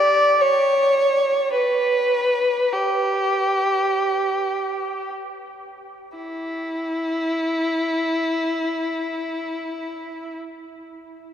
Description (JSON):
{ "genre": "classical, free, expressive piece for unaccompanied violin", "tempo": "free time", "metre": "none", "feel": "none", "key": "E dorian", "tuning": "A4 = 438 Hz", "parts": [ { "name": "warm violin", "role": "solo", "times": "0.0-10.4 s", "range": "E4 to D5", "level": "-20 LUFS", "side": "equal", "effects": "none" } ], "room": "wet cathedral reverb, RT60 6.7 s", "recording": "none", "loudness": "-19 LUFS", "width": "side -9 dB against mid", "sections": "0.0-6.2 A section; 6.2-11.3 B section", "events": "slowing down 0.0-6.2", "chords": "none", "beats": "free time" }